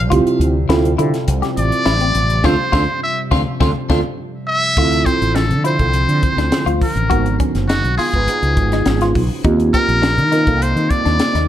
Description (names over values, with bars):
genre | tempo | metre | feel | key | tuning
electric jazz fusion | 103 BPM | 4/4 | straight | D minor | A4 = 440 Hz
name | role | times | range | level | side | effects
deep dark ambient pad | sustained chords | 0.0-11.5 s | C3 to F#4 | -26 LUFS | equal | chorus, built-in reverb
mellow fretless electric bass | bass | 0.0-11.5 s | F#1 to Eb3 | -18 LUFS | equal | none
mellow tine electric piano | accompaniment | 0.1-11.3 s | Bb3 to C5 | -20 LUFS | right 4 dB | phaser
clean electric guitar | stabs | 0.1-11.5 s | C4 to G4 | -23 LUFS | left 4 dB | wide subtle chorus
crisp fusion drum kit | drums | 0.1-11.5 s | crash cymbal, hi-hat, kick drum, snare drum | -21 LUFS | equal | none
trumpet with metal mute | melody | 1.6-11.5 s | F#4 to E5 | -19 LUFS | left 1 dB | none
room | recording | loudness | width
light reverb | dark, warm production | -13 LUFS | side -11 dB against mid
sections
0.0-4.8 A section; 4.8-11.5 B section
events
muted trumpet solo 0.0-4.8; band accent 2.4-4.8; tine electric piano fill 3.9-4.8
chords
0.0 Dm11; 4.8 Dm9; 7.1 G#m7; 8.3 C#9; 9.4 Eb6